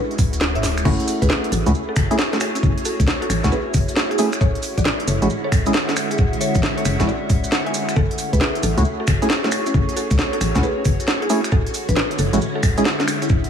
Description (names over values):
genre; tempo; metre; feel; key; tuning
UK garage, two-step garage; 135 BPM; 4/4; swing 65% on 16ths; F# minor; A4 = 440 Hz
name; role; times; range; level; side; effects
mallet-like synth pluck; melody; 0.0-13.4 s; A3 to G#5; -27 LUFS; equal; chorus, cassette tape, analog delay
soft string machine; sustained chords; 0.0-13.5 s; G#3 to G#4; -29 LUFS; equal; phaser, ensemble chorus, sidechain pumping
garage drum kit; drums; 0.1-13.5 s; crash cymbal, finger snaps, hi-hat, snare drum; -23 LUFS; equal; dub echo
organ-like FM bass; bass; 0.2-13.4 s; D1 to C#2; -20 LUFS; left 1 dB; none
electronic kick drum; drums; 0.2-13.4 s; none; -21 LUFS; equal; none
maracas; percussion; 0.2-13.4 s; none; -32 LUFS; right 4 dB; none
percussive organ stab; stabs; 0.9-12.8 s; G#3 to G#4; -23 LUFS; right 1 dB; chorus, tape echo
warbly tape-like pad; texture; 1.6-13.5 s; D3 to F#5; -28 LUFS; left 1 dB; chorus, built-in reverb, phaser, sidechain pumping
room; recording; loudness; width
light reverb; echo-heavy mix; -17 LUFS; side -8 dB against mid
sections
0.9-13.5 A section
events
drop 0.9-13.5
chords
0.0 Dmaj9#11; 0.9 F#m7; 4.4 Dmaj9#11; 8.0 F#m7; 11.5 Dmaj9#11